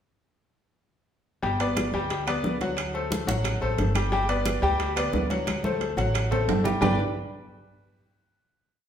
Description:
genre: latin, salsa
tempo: 178 BPM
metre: 4/4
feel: straight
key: G major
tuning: A4 = 440 Hz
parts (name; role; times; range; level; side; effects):
- bright concert grand piano; accompaniment; 1.4-7.0 s; F#3 to G5; -26 LUFS; left 2 dB; none
- upright bass; bass; 1.4-7.0 s; G1 to D2; -29 LUFS; equal; none
- bongos; percussion; 1.4-6.9 s; none; -35 LUFS; left 1 dB; none
- congas; percussion; 1.4-6.9 s; none; -34 LUFS; equal; none
- timbales; percussion; 1.6-6.9 s; none; -33 LUFS; right 6 dB; none
- claves; percussion; 1.8-6.9 s; none; -41 LUFS; right 4 dB; none
room: wet large studio reverb, RT60 1.3 s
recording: band playing live in one room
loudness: -23 LUFS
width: side -9 dB against mid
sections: 1.4-6.8 montuno (vamp); 6.8-8.2 final chord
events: drum fill 5.5-6.8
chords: 1.4 G; 2.8 D7; 4.1 G; 5.5 D7; 6.8 G5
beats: | 1.43 1.77 2.10 2.44 | 2.78 3.11 3.45 3.79 | 4.12 4.46 4.80 5.13 | 5.47 5.81 6.15 6.49 | 6.82

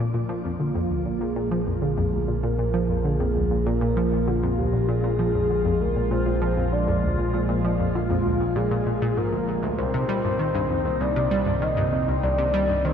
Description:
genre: ambient, sequencer-driven space music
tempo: 98 BPM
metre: 4/4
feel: straight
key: unclear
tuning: A4 = 440 Hz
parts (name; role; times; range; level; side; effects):
- phased analog pad; sustained chords; 0.0-12.9 s; Bb2 to F4; -27 LUFS; right 1 dB; phaser, chorus, shimmer reverb
- analog pluck; riff; 0.0-12.9 s; C2 to G3; -26 LUFS; equal; chorus, shimmer reverb, ping-pong delay
- fat analog bass; bass; 0.0-12.9 s; Bb1 to C2; -28 LUFS; equal; none
- soft octave-layered synth lead; melody; 0.6-12.9 s; F4 to Eb5; -27 LUFS; left 1 dB; chorus, tremolo, shimmer reverb, ping-pong delay
room: wet lush hall reverb, RT60 2.7 s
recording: dreamy mix soaked in reverb, cassette tape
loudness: -21 LUFS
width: side -8 dB against mid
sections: 0.0-12.9 A section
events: none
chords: 0.0 Bb; 9.8 Cmadd9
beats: 0.60 1.21 1.82 | 2.44 3.05 3.66 4.27 | 4.88 5.50 6.11 6.72 | 7.33 7.95 8.56 9.17 | 9.78 10.39 11.01 11.62 | 12.23 12.84

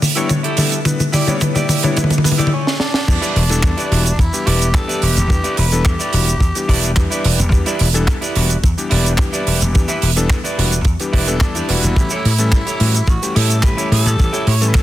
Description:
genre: nu-disco, nu disco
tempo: 108 BPM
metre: 4/4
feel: straight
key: E dorian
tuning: A4 = 439 Hz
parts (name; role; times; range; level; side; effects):
- tight funk drum kit; drums; 0.0-14.8 s; crash cymbal, handclaps, hi-hat, shaker, snare drum, toms; -19 LUFS; equal; studio reverb
- bright electric grand piano; accompaniment; 0.2-14.8 s; E3 to C#5; -23 LUFS; left 3 dB; slapback echo
- clean electric guitar; riff; 0.2-14.8 s; E4 to E5; -23 LUFS; right 2 dB; lush chorus, low-pass filter, slapback echo
- kick drum; drums; 0.3-14.8 s; none; -16 LUFS; equal; high-pass filter on kick, studio reverb, high-pass filter on snare, high-pass filter on room
- raspy tenor saxophone; melody; 2.5-7.0, 11.4-14.8 s; C#4 to C#5; -24 LUFS; equal; tape echo
- dry thumbed slap bass; bass; 3.1-14.8 s; E1 to A2; -16 LUFS; equal; tube saturation
room: small room ambience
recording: dense, heavily limited modern master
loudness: -13 LUFS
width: side -14 dB against mid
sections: 0.0-3.1 A section; 3.1-14.8 B section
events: build-up 0.0-3.1; drum fill 0.0-2.5, 2.7-3.1; stop 2.5-3.1; drop 3.1-14.8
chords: 0.0 Em7; 12.0 A7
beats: 0.30 | 0.86 1.41 1.97 2.52 | 3.08 3.64 4.19 4.75 | 5.30 5.86 6.41 6.97 | 7.53 8.08 8.64 9.19 | 9.75 10.30 10.86 11.41 | 11.97 12.53 13.08 13.64 | 14.19 14.75

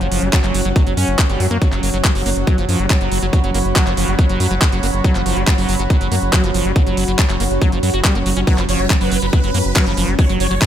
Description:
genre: psychedelic trance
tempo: 140 BPM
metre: 4/4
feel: straight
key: unclear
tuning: A4 = 440 Hz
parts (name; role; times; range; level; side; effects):
- bubbling stepped-filter texture; sustained chords; 0.0-10.7 s; F#3 to F#4; -25 LUFS; equal; chorus, built-in reverb, sidechain pumping
- liquid acid bass; riff; 0.0-10.7 s; E#3 to F#4; -23 LUFS; right 1 dB; chorus, auto-pan, sidechain pumping, ping-pong delay
- round analog bass; bass; 0.0-10.6 s; F#1 to F#2; -20 LUFS; equal; none
- garage drum kit; drums; 0.0-10.7 s; handclaps, hi-hat; -22 LUFS; equal; none
- airy breathy pad; texture; 0.0-10.7 s; F#3 to B5; -24 LUFS; right 1 dB; chorus, sidechain pumping
- electronic kick drum; drums; 0.3-10.7 s; none; -16 LUFS; equal; none
- dense compressed supersaw; melody; 8.5-10.6 s; B4 to C#5; -23 LUFS; right 1 dB; phaser, sidechain pumping
room: digital ambience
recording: none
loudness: -14 LUFS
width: side -10 dB against mid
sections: 0.0-10.7 A section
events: none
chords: 0.0 F#5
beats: 0.33 0.76 1.19 | 1.62 2.04 2.47 2.90 | 3.33 3.76 4.19 4.62 | 5.04 5.47 5.90 6.33 | 6.76 7.19 7.62 8.04 | 8.47 8.90 9.33 9.76 | 10.19 10.62

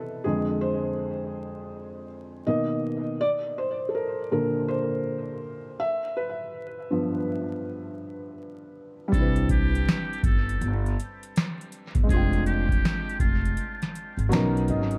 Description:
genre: lo-fi hip hop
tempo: 81 BPM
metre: 4/4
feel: swing 63% on 16ths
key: C major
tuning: A4 = 440 Hz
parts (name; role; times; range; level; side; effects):
- felt-muted upright piano; accompaniment; 0.0-15.0 s; F2 to A#5; -30 LUFS; equal; cassette tape, dub echo
- trumpet with metal mute; melody; 9.1-13.8 s; F4 to A4; -36 LUFS; equal; dub echo
- upright bass; bass; 9.1-15.0 s; F1 to C2; -29 LUFS; equal; none
- booming analog drum machine; drums; 9.1-15.0 s; hi-hat, kick drum, snare drum; -28 LUFS; equal; none
room: moderate spring reverb, RT60 1.8 s, small room ambience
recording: echo-heavy mix, vinyl crackle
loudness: -26 LUFS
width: mono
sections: 0.0-9.1 A section; 9.1-15.0 B section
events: felt piano solo 0.0-9.1; felt piano fill 13.9-15.0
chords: 0.2 Fm6; 2.5 Bmaj7; 3.2 Bbmaj9; 5.8 G7; 9.1 Cmaj9; 12.1 Fm6; 14.3 Bmaj9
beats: | 0.24 0.98 1.72 2.46 | 3.20 3.94 4.68 5.42 | 6.16 6.90 7.64 8.38 | 9.12 9.87 10.61 11.35 | 12.09 12.83 13.57 14.31

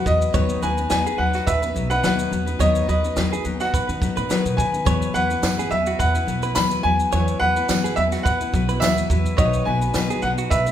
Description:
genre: acoustic pop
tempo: 106 BPM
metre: 4/4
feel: swing 55% on 16ths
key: E major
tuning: A4 = 440 Hz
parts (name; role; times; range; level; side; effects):
- clear upright piano; melody; 0.0-10.7 s; D#5 to B5; -23 LUFS; equal; none
- picked steel-string acoustic guitar; accompaniment; 0.0-10.7 s; B2 to B4; -24 LUFS; left 5 dB; none
- upright bass; bass; 0.1-10.7 s; B1 to D#3; -24 LUFS; right 1 dB; none
- compact cocktail drum kit; drums; 0.1-10.7 s; kick drum, shaker, snare drum; -25 LUFS; right 1 dB; none
- direct-recorded clean electric guitar; arpeggios; 0.3-10.7 s; F#4 to C#5; -29 LUFS; right 6 dB; none
- tambourine; percussion; 5.4-10.1 s; none; -33 LUFS; right 6 dB; none
room: moderate recital hall reverb, RT60 1.5 s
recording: recorded in a church or concert hall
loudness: -18 LUFS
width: side -10 dB against mid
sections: 0.0-10.7 A section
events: none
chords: 0.3 B; 4.9 Esus2; 9.4 B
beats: | 0.34 0.91 1.48 2.04 | 2.60 3.17 3.73 4.30 | 4.86 5.43 5.99 6.56 | 7.12 7.69 8.25 8.82 | 9.38 9.95 10.51

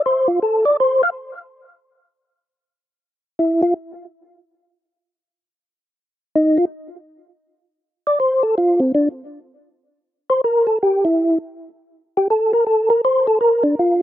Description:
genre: jazz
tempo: 162 BPM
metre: 4/4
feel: swing 66% on 8ths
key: F major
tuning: A4 = 440 Hz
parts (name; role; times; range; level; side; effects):
- percussive tonewheel organ; solo; 0.0-1.1, 3.4-3.7, 6.4-14.0 s; C4 to F5; -15 LUFS; equal; slow rotary speaker, chorus vibrato
room: little or no reverb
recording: recorded outdoors, with no room sound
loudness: -15 LUFS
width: side -12 dB against mid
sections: 0.0-3.0 A section; 3.0-14.0 A section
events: tonewheel organ solo 0.0-3.0, 3.0-14.0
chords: none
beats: | 0.02 0.39 0.76 1.13 | 1.50 1.88 2.25 2.62 | 2.99 3.36 3.73 4.10 | 4.47 4.84 5.21 5.59 | 5.96 6.33 6.70 7.07 | 7.44 7.81 8.18 8.55 | 8.93 9.30 9.67 10.04 | 10.41 10.78 11.15 11.52 | 11.89 12.26 12.64 13.01 | 13.38 13.75

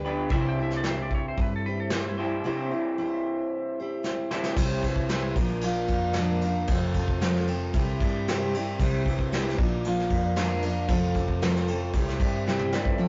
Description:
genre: folk rock and heartland rock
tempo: 114 BPM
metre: 4/4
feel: straight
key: unclear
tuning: A4 = 444 Hz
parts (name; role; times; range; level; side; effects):
- picked steel-string acoustic guitar; accompaniment; 0.0-13.1 s; Bb2 to C5; -32 LUFS; equal; none
- mellow tonewheel organ; sustained chords; 0.0-13.1 s; B3 to E5; -41 LUFS; equal; none
- electric guitar through a small old amp; riff; 0.0-13.0 s; F2 to C5; -34 LUFS; equal; none
- hollow-body short-scale picked electric bass; bass; 0.0-12.9 s; F1 to G2; -33 LUFS; equal; none
- pedal steel guitar; second line; 0.3-2.7 s; E4 to G5; -39 LUFS; equal; none
- soft brush drum kit; drums; 0.3-13.0 s; crash cymbal, hi-hat, kick drum, snare drum, toms; -31 LUFS; equal; none
room: moderate stone room reverb, RT60 1.2 s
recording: rough rehearsal-room recording, warm saturation, nothing above 7.7 kHz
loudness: -27 LUFS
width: mono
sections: 0.0-4.6 A section; 4.6-13.0 B section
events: drum fill 4.0-4.6, 12.5-13.0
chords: 0.3 C; 5.4 Bb; 6.7 F; 7.7 C; 9.6 Bb; 10.9 F; 11.9 C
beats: | 0.31 0.84 1.38 1.91 | 2.45 2.98 3.51 4.04 | 4.58 5.11 5.64 6.16 | 6.69 7.22 7.75 8.27 | 8.80 9.32 9.85 10.37 | 10.90 11.42 11.95 12.47 | 12.99

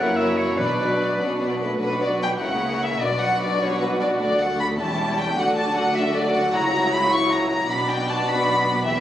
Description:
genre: quick classical-period movement for symphony orchestra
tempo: 102 BPM (dotted quarters)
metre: 6/8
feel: rubato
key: B minor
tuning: A4 = 440 Hz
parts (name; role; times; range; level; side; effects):
- warm chamber violin section; melody; 0.0-9.0 s; B4 to C#6; -23 LUFS; left 1 dB; none
- bright oboe; second line; 0.0-1.2 s; B4 to F#5; -26 LUFS; equal; none
- rich chamber violin section; second line; 0.0-9.0 s; D4 to D5; -27 LUFS; left 2 dB; none
- dark studio viola section; accompaniment; 0.0-9.0 s; F#3 to E4; -27 LUFS; right 1 dB; none
- mellow French horn section; sustained chords; 0.0-1.8 s; A3 to E4; -27 LUFS; equal; none
- dark chamber double bass section; bass; 0.0-9.0 s; E1 to D2; -33 LUFS; right 1 dB; none
- rich chamber cello section; bass; 0.0-9.0 s; D2 to D3; -29 LUFS; right 1 dB; none
- timpani; percussion; 0.6-1.2 s; B2; -35 LUFS; right 1 dB; none
room: wet recital hall reverb, RT60 1.5 s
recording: recorded on a phone in the room, club reverb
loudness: -19 LUFS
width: side -11 dB against mid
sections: 0.0-1.8 A section; 1.8-9.0 B section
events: none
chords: 0.0 F#7; 0.6 Bm; 2.4 A#dim/C#; 3.0 Bm; 4.2 D; 4.8 C#dim/E; 5.4 D; 6.5 F#7/C#; 7.7 Bm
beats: | 0.59 1.20 | 1.82 2.42 | 3.02 3.61 | 4.20 4.79 | 5.37 5.96 | 6.54 7.12 | 7.69 8.27 | 8.86

